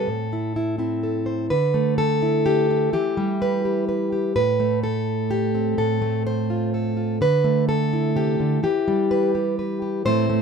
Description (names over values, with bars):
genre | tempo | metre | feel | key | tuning
folk, solo fingerstyle acoustic guitar | 126 BPM | 3/4 | straight | A minor | A4 = 440 Hz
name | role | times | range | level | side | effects
fingerpicked plugged-in steel-string acoustic guitar | solo | 0.0-10.4 s | A2 to C5 | -20 LUFS | equal | none
room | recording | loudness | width
light reverb | minimal, uncompressed stereo recording, faint mains hum | -20 LUFS | side -6 dB against mid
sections
0.0-1.5 A section; 1.5-10.4 B section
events
none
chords
0.1 Am; 1.5 Dsus2; 2.9 Em; 4.4 Am; 5.8 F/A; 7.2 Dsus2; 8.6 Em